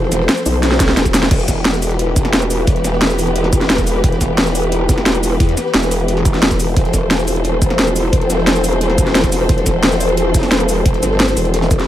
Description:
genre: dark technical drum and bass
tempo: 176 BPM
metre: 4/4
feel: straight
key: E phrygian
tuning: A4 = 439 Hz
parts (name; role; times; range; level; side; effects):
- dark symphonic string section; sustained chords; 0.0-11.9 s; E3 to C5; -20 LUFS; left 1 dB; vintage 12-bit sampler grit, sidechain pumping
- growl bass; bass; 0.0-11.9 s; E1 to E2; -17 LUFS; equal; chorus, sidechain pumping
- crunchy breakbeat drum kit; drums; 0.0-11.9 s; hi-hat, snare drum; -32 LUFS; equal; none
- drum and bass drum kit; drums; 0.1-11.9 s; crash cymbal, hi-hat, shaker, snare drum; -17 LUFS; equal; overdrive
- electronic kick drum; drums; 0.8-11.8 s; none; -16 LUFS; equal; overdrive
room: studio ambience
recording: none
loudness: -12 LUFS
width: side -12 dB against mid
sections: 0.0-1.3 A section; 1.3-11.9 A section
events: drop 0.0-1.3, 1.3-11.9; drum fill 0.6-1.3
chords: 0.0 F/E; 1.3 Em; 6.8 F/E

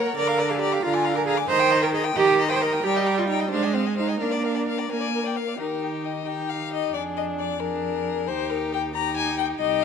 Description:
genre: quick classical-period movement for string quartet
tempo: 89 BPM (dotted quarters)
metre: 6/8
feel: rubato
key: Eb major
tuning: A4 = 440 Hz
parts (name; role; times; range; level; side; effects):
- rich violin; melody; 0.0-9.8 s; G4 to Eb6; -28 LUFS; left 12 dB; none
- rich violin; second line; 0.0-9.8 s; G4 to Ab5; -29 LUFS; left 5 dB; none
- warm viola; accompaniment; 0.0-9.8 s; D3 to Eb4; -28 LUFS; right 2 dB; none
- dark cello; bass; 0.0-9.8 s; C2 to C5; -25 LUFS; right 5 dB; none
room: moderate scoring stage reverb, RT60 1.6 s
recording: none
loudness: -21 LUFS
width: side -7 dB against mid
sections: 0.0-5.6 A section; 5.6-9.8 B section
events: none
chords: 0.2 Bb/D; 0.8 Bb7/D; 1.5 Eb; 2.8 Eb/G; 3.5 Fm7/Ab; 4.2 Bb; 5.6 Eb; 7.0 Bb7/F; 8.3 Eb

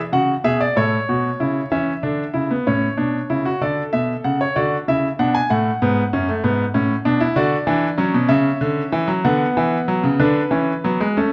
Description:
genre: classical, baroque-style 3-part fugue for grand piano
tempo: 64 BPM (dotted quarters)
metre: 6/8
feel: straight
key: unclear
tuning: A4 = 439 Hz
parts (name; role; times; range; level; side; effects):
- clear grand piano; solo; 0.1-11.3 s; F#2 to G#5; -19 LUFS; equal; none
room: moderate recital hall reverb, RT60 1.5 s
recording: close, detailed microphones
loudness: -19 LUFS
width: mono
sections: 0.0-1.7 A section; 1.7-11.3 B section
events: none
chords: 0.0 E; 0.8 A; 1.7 C#m; 2.7 A; 3.6 D; 4.6 Bm; 5.5 F#m; 6.4 E/G#; 7.4 D; 8.3 C#m; 9.2 Bm/D; 10.2 E7/D

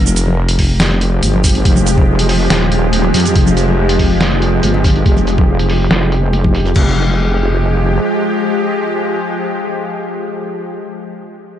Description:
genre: deep dubstep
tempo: 141 BPM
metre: 4/4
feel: half-time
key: F minor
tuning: A4 = 445 Hz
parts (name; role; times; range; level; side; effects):
- bowed-like drone; sustained chords; 0.0-10.7 s; F3 to G4; -17 LUFS; equal; built-in reverb
- wobble bass; bass; 0.0-8.0 s; Eb1 to F2; -14 LUFS; equal; chorus
- trip hop sampler-style drum kit; drums; 0.1-6.8 s; crash cymbal, hi-hat, shaker, snare drum; -18 LUFS; equal; low-pass filter on hats, small room ambience, low-pass filter on cymbals, low-pass filter on perc, low-pass filter on snare
- congas; percussion; 0.1-6.5 s; none; -21 LUFS; left 3 dB; dub echo
- electronic kick drum; drums; 0.6-6.8 s; none; -13 LUFS; equal; small room ambience
room: light reverb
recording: nothing above 10.6 kHz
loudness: -11 LUFS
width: side -10 dB against mid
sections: 0.0-6.8 A section; 6.8-10.2 B section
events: filter sweep on drum 0.0-6.8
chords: 0.0 Fmadd9

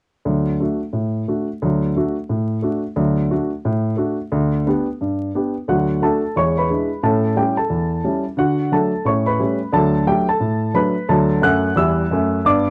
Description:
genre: jazz, stride piano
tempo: 177 BPM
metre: 4/4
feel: swing 61% on 8ths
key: D major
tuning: A4 = 439 Hz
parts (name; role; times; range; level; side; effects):
- warm baby grand piano; solo; 0.3-12.7 s; D2 to F#6; -19 LUFS; equal; none
room: light reverb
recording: dry, close 1970s-style studio recording, vinyl crackle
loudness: -19 LUFS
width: mono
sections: 0.3-5.7 A section; 5.7-12.7 B section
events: none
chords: 0.3 D; 4.3 G/D; 5.7 D; 6.4 E7; 7.0 A7; 8.4 D; 9.1 A7; 9.7 D

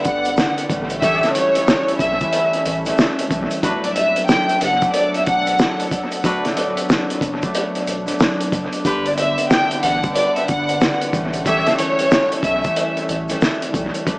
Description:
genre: hip hop, boom-bap hip-hop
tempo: 92 BPM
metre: 4/4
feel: swing 63% on 16ths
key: unclear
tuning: A4 = 439 Hz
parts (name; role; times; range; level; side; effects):
- clear studio violin section; melody; 0.0-12.9 s; C#5 to G5; -19 LUFS; equal; high-pass filter, low-pass filter, dub echo
- concert harp; accompaniment; 0.0-14.2 s; D3 to D4; -24 LUFS; equal; cassette tape, high-pass filter, low-pass filter, dub echo
- dark analog pad; sustained chords; 0.0-14.0 s; F#3 to B4; -29 LUFS; equal; chorus, phaser, high-pass filter, low-pass filter
- cloth-damped thuddy drum kit; drums; 0.0-14.2 s; hi-hat, kick drum, snare drum; -20 LUFS; equal; dub echo
- tube shaker; percussion; 0.0-14.1 s; none; -38 LUFS; left 1 dB; none
- warm sub bass; bass; 0.1-14.2 s; D1 to B1; -32 LUFS; equal; none
- clear horn section; stabs; 1.0-11.7 s; D4 to C#5; -29 LUFS; equal; none
room: light reverb, studio reverb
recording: echo-heavy mix, vinyl crackle, small speaker sound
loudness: -16 LUFS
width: side -25 dB against mid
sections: 0.0-14.1 A section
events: break 6.2-8.8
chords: 0.0 G; 0.7 A7; 3.6 D6; 8.8 G; 11.1 A7

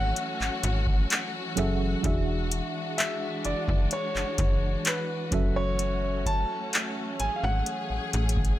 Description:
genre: contemporary R&B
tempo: 64 BPM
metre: 4/4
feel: straight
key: F# minor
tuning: A4 = 439 Hz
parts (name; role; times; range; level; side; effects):
- clear concert grand piano; melody; 0.0-8.3 s; B4 to A5; -32 LUFS; equal; ping-pong delay
- FM electric piano with auto-pan; accompaniment; 0.0-8.6 s; E3 to E5; -34 LUFS; right 2 dB; none
- rich studio string section; sustained chords; 0.0-8.6 s; E3 to G#4; -33 LUFS; left 1 dB; none
- slap-like FM bass; bass; 0.0-8.5 s; E1 to A1; -28 LUFS; equal; none
- booming analog drum machine; drums; 0.2-8.6 s; handclaps, hi-hat, kick drum; -26 LUFS; equal; none
room: digital ambience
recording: none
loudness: -25 LUFS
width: side -14 dB against mid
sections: 0.0-8.6 A section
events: none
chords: 0.0 F#m7; 2.0 E9; 5.3 F#m7

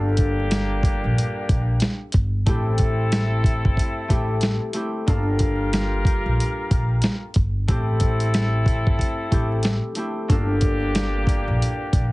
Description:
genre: hip hop, boom-bap hip-hop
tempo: 92 BPM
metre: 4/4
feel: swing 62% on 16ths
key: G dorian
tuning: A4 = 441 Hz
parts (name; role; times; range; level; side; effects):
- concert harp; accompaniment; 0.0-12.1 s; G2 to A4; -28 LUFS; left 1 dB; cassette tape, high-pass filter, low-pass filter
- mellow horn section; stabs; 0.0-12.1 s; Bb3 to Bb4; -28 LUFS; left 1 dB; high-pass filter, low-pass filter, slapback echo
- upright bass; bass; 0.0-12.1 s; G1 to Bb1; -23 LUFS; equal; none
- dusty soul sampler-style drum kit; drums; 0.2-12.1 s; hi-hat, kick drum, snare drum; -21 LUFS; equal; none
room: little or no reverb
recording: heavily compressed radio sound, multiband compression, vinyl crackle, nothing above 10.3 kHz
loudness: -19 LUFS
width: side -21 dB against mid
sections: 0.0-12.1 A section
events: none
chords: 0.0 Gm7; 2.5 Am7; 5.1 Gm7; 7.7 Am7; 10.3 Gm7

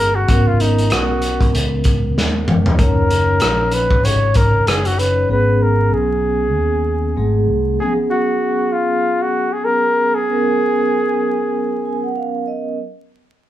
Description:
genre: hip hop, jazz-hop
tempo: 96 BPM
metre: 4/4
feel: swing 58% on 16ths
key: G# dorian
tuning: A4 = 441 Hz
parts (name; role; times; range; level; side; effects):
- warm flugelhorn; melody; 0.0-12.2 s; D#4 to C#5; -18 LUFS; equal; none
- vibraphone with soft mallets; accompaniment; 0.0-12.8 s; E#3 to G#5; -20 LUFS; right 1 dB; none
- mellow fretless electric bass; bass; 0.0-7.8 s; E#1 to D#2; -18 LUFS; equal; none
- crunchy breakbeat drum kit; drums; 0.3-5.2 s; hi-hat, kick drum, rim click, snare drum, toms; -17 LUFS; equal; none
room: moderate large studio reverb, RT60 0.8 s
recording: band playing live in one room, vinyl crackle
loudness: -14 LUFS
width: side -12 dB against mid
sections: 0.0-12.8 A section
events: drum fill 2.2-2.8; vibraphone fill 11.5-12.8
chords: 0.3 G#m11; 2.8 F#6; 5.3 G#m7; 7.2 G#7b9; 7.8 C#7sus4; 10.3 G#m11

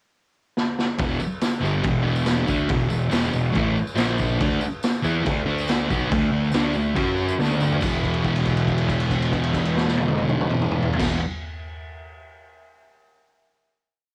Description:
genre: garage rock duo or trio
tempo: 140 BPM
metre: 4/4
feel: straight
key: unclear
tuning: A4 = 440 Hz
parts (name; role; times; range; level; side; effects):
- raw garage drum kit; drums; 0.6-11.1 s; crash cymbal, kick drum, snare drum, toms; -28 LUFS; equal; cassette tape
- thick fuzz guitar; riff; 1.0-11.2 s; E2 to F#4; -26 LUFS; equal; distortion, cassette tape
- fuzz picked electric bass; bass; 1.0-11.2 s; E1 to F#2; -28 LUFS; equal; overdrive
- tambourine; percussion; 1.0-8.0 s; none; -44 LUFS; equal; none
room: light reverb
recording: home recording on cassette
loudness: -22 LUFS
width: mono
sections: 0.0-1.0 pickup bar; 1.0-7.8 riff; 7.8-11.3 final chord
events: drum fill 0.6-1.0, 7.4-7.8; held note 7.8-11.0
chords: 0.0 N.C.; 1.0 E5; 4.0 A#5; 4.4 D5; 7.0 F#5; 7.4 D5; 7.8 E5

